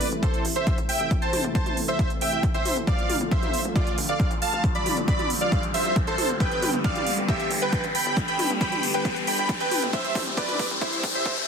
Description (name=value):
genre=uplifting trance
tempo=136 BPM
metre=4/4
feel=straight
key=unclear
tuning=A4 = 442 Hz
part: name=dense compressed supersaw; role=melody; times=0.0-11.4 s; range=E4 to B5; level=-26 LUFS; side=right 1 dB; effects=vintage 12-bit sampler grit, sidechain pumping, ping-pong delay
part: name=lush unison pad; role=sustained chords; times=0.0-11.1 s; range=C3 to G4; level=-33 LUFS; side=left 1 dB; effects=chorus, sidechain pumping
part: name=big-room dance drum kit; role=drums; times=0.0-11.5 s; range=hi-hat, toms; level=-30 LUFS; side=equal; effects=overdrive
part: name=riser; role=sound effects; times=1.2-11.5 s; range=none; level=-32 LUFS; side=left 2 dB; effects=none
part: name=tight sequencer bass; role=bass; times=0.1-11.5 s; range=G1 to A2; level=-39 LUFS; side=equal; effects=none
part: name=electronic kick drum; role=drums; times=0.2-11.3 s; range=none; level=-26 LUFS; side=equal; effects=overdrive
room=light reverb, digital ambience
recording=dense, heavily limited modern master, high-pass filter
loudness=-22 LUFS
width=side -6 dB against mid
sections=0.0-11.5 A section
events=build-up 0.0-11.5; filter sweep 0.0-11.5; riser 1.2-11.5; drum fill 6.4-11.5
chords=0.0 Am; 2.9 Dm/A; 6.4 G; 9.9 C